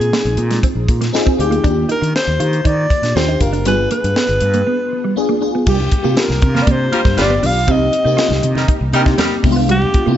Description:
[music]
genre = polished 1980s jazz-funk pop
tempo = 119 BPM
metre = 4/4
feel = straight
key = unclear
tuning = A4 = 441 Hz
[part]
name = breathy alto saxophone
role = melody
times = 0.0-10.2 s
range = G4 to F5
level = -19 LUFS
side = equal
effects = none
[part]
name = FM electric piano with soft pad layer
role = accompaniment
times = 0.0-10.2 s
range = Ab3 to Ab4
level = -20 LUFS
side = left 3 dB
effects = phaser, ensemble chorus
[part]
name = fretless electric bass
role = bass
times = 0.0-10.2 s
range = F#1 to Eb3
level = -18 LUFS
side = equal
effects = none
[part]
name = tight funk drum kit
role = drums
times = 0.0-10.1 s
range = crash cymbal, hi-hat, kick drum, snare drum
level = -18 LUFS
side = equal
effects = none
[part]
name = mellow electric guitar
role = riff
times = 0.1-10.2 s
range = G3 to F4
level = -22 LUFS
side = right 5 dB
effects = analog chorus
[part]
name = congas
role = percussion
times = 5.7-9.9 s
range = none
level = -30 LUFS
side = right 1 dB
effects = none
[part]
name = mellow horn section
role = second line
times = 6.6-9.3 s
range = G3 to B4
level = -21 LUFS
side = right 1 dB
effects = none
[sound]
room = light reverb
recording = nothing above 7.8 kHz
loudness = -13 LUFS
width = side -11 dB against mid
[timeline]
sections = 0.0-5.7 A section; 5.7-10.2 B section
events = break 4.7-5.7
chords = 0.0 Bb7sus4; 1.6 Ebmaj7; 3.7 G7b9; 5.7 Gm7/C; 7.2 G7; 7.7 Cm7; 9.4 G7b9/C

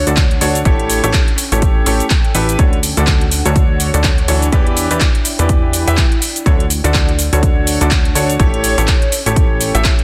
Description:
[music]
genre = piano house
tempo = 124 BPM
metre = 4/4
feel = swing 58% on 16ths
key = D major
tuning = A4 = 440 Hz
[part]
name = clear baby grand piano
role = riff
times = 0.0-9.9 s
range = D3 to E5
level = -21 LUFS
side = equal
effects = sidechain pumping, digital delay
[part]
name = plucky analog bass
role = bass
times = 0.0-9.9 s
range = A1 to E2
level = -20 LUFS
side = equal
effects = sidechain pumping
[part]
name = warbly tape-like pad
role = texture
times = 0.0-10.0 s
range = C#4 to G5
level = -27 LUFS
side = equal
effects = chorus, built-in reverb, phaser, sidechain pumping
[part]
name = house drum kit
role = drums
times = 0.1-10.0 s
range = handclaps, hi-hat, shaker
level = -21 LUFS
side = equal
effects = small room ambience
[part]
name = electronic kick drum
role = drums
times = 0.2-10.0 s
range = none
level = -16 LUFS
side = equal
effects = small room ambience
[sound]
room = little or no reverb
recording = dense, heavily limited modern master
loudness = -14 LUFS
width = mono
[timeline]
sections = 0.0-10.0 A section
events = none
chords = 0.0 Dmaj7; 0.7 A7; 2.6 Dmaj7; 4.5 Em7; 6.2 Dmaj7; 8.4 A7

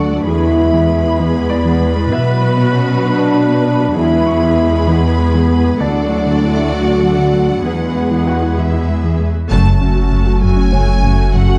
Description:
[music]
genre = cinematic, hybrid orchestral and electronic film score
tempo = 65 BPM (dotted quarters)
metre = 6/8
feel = straight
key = unclear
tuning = A4 = 439 Hz
[part]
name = warm symphonic violin section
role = second line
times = 0.0-11.6 s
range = B4 to B5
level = -27 LUFS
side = equal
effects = none
[part]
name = warm symphonic viola section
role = accompaniment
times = 0.0-11.6 s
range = A3 to B4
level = -26 LUFS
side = equal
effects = none
[part]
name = hollow soft pad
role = sustained chords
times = 0.0-11.6 s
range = D3 to D5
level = -23 LUFS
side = equal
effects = chorus
[part]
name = warm French horn section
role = sustained chords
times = 0.0-9.2 s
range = B3 to F#4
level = -19 LUFS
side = equal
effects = none
[part]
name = soft round pluck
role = arpeggios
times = 0.0-11.6 s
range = D3 to B4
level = -24 LUFS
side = equal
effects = chorus, tape echo
[part]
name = rich studio cello section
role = bass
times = 0.0-11.4 s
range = D2 to B2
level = -19 LUFS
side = equal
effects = none
[part]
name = bright grand piano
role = texture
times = 0.0-11.6 s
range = D4 to C#6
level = -31 LUFS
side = equal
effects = tape echo
[part]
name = warm symphonic violin section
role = melody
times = 9.5-11.6 s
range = F#5 to A5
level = -27 LUFS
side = equal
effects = none
[part]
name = rich chamber double bass section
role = bass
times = 9.5-11.4 s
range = F#1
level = -19 LUFS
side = equal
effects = none
[part]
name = saturated sub bass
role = bass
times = 9.5-11.6 s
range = F#1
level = -16 LUFS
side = equal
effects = none
[sound]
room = moderate scoring stage reverb, RT60 1.6 s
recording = dark, warm production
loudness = -14 LUFS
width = mono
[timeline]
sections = 0.0-9.5 A section; 9.5-11.6 B section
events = band accent 9.5-10.1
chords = 0.3 E; 2.1 Bm; 4.0 E; 5.8 D; 7.7 E; 9.5 F#m

